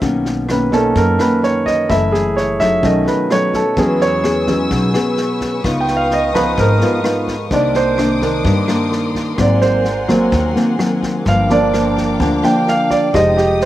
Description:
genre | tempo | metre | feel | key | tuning
bossa nova | 128 BPM | 4/4 | straight | unclear | A4 = 437 Hz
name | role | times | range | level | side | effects
clear baby grand piano | accompaniment | 0.0-13.7 s | D#3 to G5 | -16 LUFS | right 2 dB | slapback echo
nylon-string guitar | accompaniment | 0.0-13.7 s | F#2 to G#4 | -18 LUFS | left 2 dB | slapback echo
upright bass | bass | 0.0-13.7 s | F1 to G2 | -20 LUFS | equal | none
vintage drum kit | drums | 0.0-13.7 s | kick drum, rim click, snare drum | -25 LUFS | equal | none
warm studio string section | sustained chords | 3.8-13.7 s | Bb4 to E6 | -25 LUFS | left 3 dB | none
room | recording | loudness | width
little or no reverb | recorded outdoors, with no room sound | -13 LUFS | side -14 dB against mid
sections
0.0-13.7 A section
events
grand piano solo 0.0-13.7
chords
0.0 Bmaj9; 1.9 Gbm7; 2.8 B7; 3.8 E6; 5.6 Db9; 7.5 Cm9; 9.4 Ab9; 11.3 Gm7; 13.1 Fm9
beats
| 0.02 0.49 0.96 1.43 | 1.90 2.37 2.83 3.30 | 3.77 4.24 4.71 5.18 | 5.65 6.12 6.58 7.05 | 7.52 7.99 8.46 8.93 | 9.39 9.86 10.33 10.80 | 11.27 11.74 12.20 12.67 | 13.14 13.61

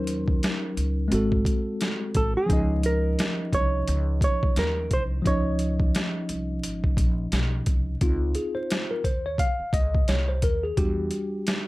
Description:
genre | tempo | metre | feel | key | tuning
hip hop, jazz-hop | 87 BPM | 4/4 | swing 58% on 16ths | Db major | A4 = 442 Hz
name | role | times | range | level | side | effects
hollow-body jazz guitar | melody | 0.0-7.3 s | Ab4 to Db5 | -28 LUFS | right 2 dB | none
mellow tine electric piano | accompaniment | 0.0-11.7 s | F3 to F5 | -28 LUFS | left 1 dB | medium stereo tremolo
upright bass | bass | 0.0-11.1 s | Ab1 to E2 | -27 LUFS | equal | none
boom bap sampler-style drum kit | drums | 0.1-11.7 s | hi-hat, kick drum, snare drum | -25 LUFS | equal | none
room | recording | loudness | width
light reverb | vinyl crackle | -22 LUFS | side -19 dB against mid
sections
0.0-8.0 A section; 8.0-11.7 B section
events
tine electric piano solo 8.0-11.7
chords
0.0 Ebm7; 1.1 Ab7b9; 2.5 Dbmaj9; 8.0 Dbmaj7; 10.8 Em7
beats
0.43 1.12 1.81 | 2.50 3.19 3.88 4.57 | 5.26 5.95 6.63 7.33 | 8.01 8.70 9.39 10.08 | 10.77 11.46

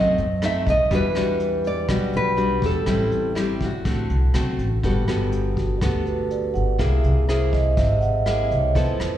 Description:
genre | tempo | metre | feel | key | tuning
bossa nova | 122 BPM | 4/4 | straight | G major | A4 = 440 Hz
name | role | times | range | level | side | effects
nylon-string guitar | melody | 0.0-4.3 s | F#4 to E5 | -23 LUFS | equal | plate reverb, slapback echo
nylon-string guitar | accompaniment | 0.0-9.2 s | A2 to A4 | -26 LUFS | left 2 dB | plate reverb, slapback echo
vibraphone with soft mallets | accompaniment | 0.0-0.9, 4.3-9.2 s | F#4 to F#5 | -26 LUFS | right 4 dB | plate reverb, slapback echo
upright bass | bass | 0.0-9.2 s | G1 to F#2 | -23 LUFS | equal | none
vintage brush drum kit | drums | 0.2-9.1 s | hi-hat, kick drum, rim click | -29 LUFS | equal | none
room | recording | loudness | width
light reverb | live gig heard through the venue's PA, recital hall reverb | -19 LUFS | side -11 dB against mid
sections
0.0-4.8 A section; 4.8-9.2 B section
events
vibraphone solo 4.8-9.2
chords
0.0 B7b9; 0.9 Em9; 2.9 Am7; 3.9 D7; 4.8 Gmaj9; 6.8 Caug7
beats
0.42 | 0.91 1.40 1.89 2.38 | 2.87 3.36 3.85 4.34 | 4.83 5.32 5.81 6.30 | 6.79 7.28 7.77 8.26 | 8.76

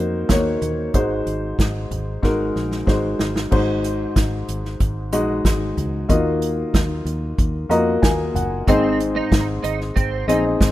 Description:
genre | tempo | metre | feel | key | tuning
piano-driven pop | 93 BPM | 4/4 | straight | unclear | A4 = 440 Hz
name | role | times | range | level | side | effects
warm upright piano | accompaniment | 0.0-10.7 s | Ab2 to Bb5 | -21 LUFS | left 1 dB | none
fingered electric bass | bass | 0.0-10.7 s | Gb1 to F2 | -26 LUFS | equal | none
unplugged drum kit | drums | 0.3-10.7 s | crash cymbal, hi-hat, kick drum, snare drum, toms | -20 LUFS | equal | none
twelve-string electric guitar | riff | 8.7-10.4 s | C4 to Eb4 | -25 LUFS | right 7 dB | ensemble chorus
room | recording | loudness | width
studio ambience | rough home demo mix | -18 LUFS | side -15 dB against mid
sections
0.0-3.5 A section; 3.5-10.7 B section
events
drum fill 2.2-3.5; upright piano fill 7.4-8.7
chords
0.0 Ebm7; 0.9 Ab7; 6.1 Ebmadd9; 8.7 Ab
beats
0.30 | 0.94 1.59 2.23 2.88 | 3.52 4.17 4.81 5.46 | 6.10 6.75 7.39 8.03 | 8.68 9.32 9.96 10.61

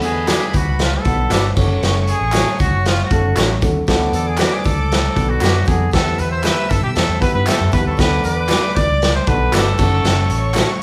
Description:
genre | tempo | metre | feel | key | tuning
uptempo 1960s-style soul | 117 BPM | 4/4 | straight | D major | A4 = 440 Hz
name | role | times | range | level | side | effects
clear trumpet | melody | 0.0-10.8 s | F4 to D5 | -24 LUFS | equal | none
clear studio violin section | second line | 0.0-10.8 s | E4 to E6 | -32 LUFS | equal | none
clear upright piano | accompaniment | 0.0-10.6 s | A3 to C#5 | -26 LUFS | equal | none
vintage muted fingered electric bass | bass | 0.0-10.6 s | F#1 to B2 | -22 LUFS | equal | none
raw garage drum kit | drums | 0.0-10.7 s | crash cymbal, hi-hat, kick drum, snare drum | -21 LUFS | equal | none
tambourine and handclaps | percussion | 0.0-10.7 s | none | -33 LUFS | equal | none
electric guitar through a small old amp | stabs | 0.3-10.7 s | F#4 to E5 | -25 LUFS | equal | none
room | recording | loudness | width
moderate large studio reverb, RT60 0.9 s | band playing live in one room | -16 LUFS | mono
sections
0.0-10.8 A section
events
trumpet solo 0.0-10.8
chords
0.0 D6; 1.6 F#m; 3.9 D6; 5.9 Em; 8.0 D6; 9.8 F#m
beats
0.28 0.80 1.31 | 1.83 2.34 2.85 3.37 | 3.88 4.39 4.91 5.42 | 5.93 6.45 6.96 7.47 | 7.99 8.50 9.02 9.53 | 10.04 10.56

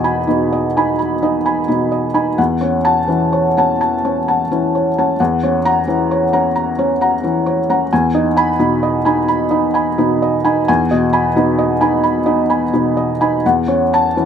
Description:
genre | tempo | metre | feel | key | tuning
neoclassical minimalist piano | 43 BPM (dotted quarters) | 6/8 | rubato | E major | A4 = 440 Hz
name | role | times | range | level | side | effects
felt-muted upright piano | solo | 0.0-14.3 s | E2 to B5 | -13 LUFS | equal | none
room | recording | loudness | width
moderate stone room reverb, RT60 1.1 s | band playing live in one room | -13 LUFS | side -8 dB against mid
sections
0.0-14.3 A section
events
none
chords
0.0 Emaj7; 2.4 A6/E; 5.2 F#7/E; 7.9 Emaj7; 13.4 A6/E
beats
0.98 | 2.39 3.81 | 5.19 6.56 | 7.91 9.28 | 10.68 12.04 | 13.44

